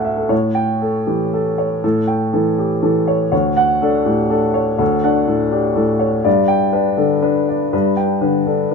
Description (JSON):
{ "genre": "neoclassical minimalist piano", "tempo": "121 BPM", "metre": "3/4", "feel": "rubato", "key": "unclear", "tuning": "A4 = 440 Hz", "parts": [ { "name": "warm upright piano", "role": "solo", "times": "0.0-8.7 s", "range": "D2 to A5", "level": "-14 LUFS", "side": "left 1 dB", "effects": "none" } ], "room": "wet small room reverb, RT60 0.5 s", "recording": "minimal, uncompressed stereo recording", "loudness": "-14 LUFS", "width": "side -4 dB against mid", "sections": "0.3-8.7 A section", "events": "none", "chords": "0.3 A7; 3.3 Dmaj7; 6.3 G" }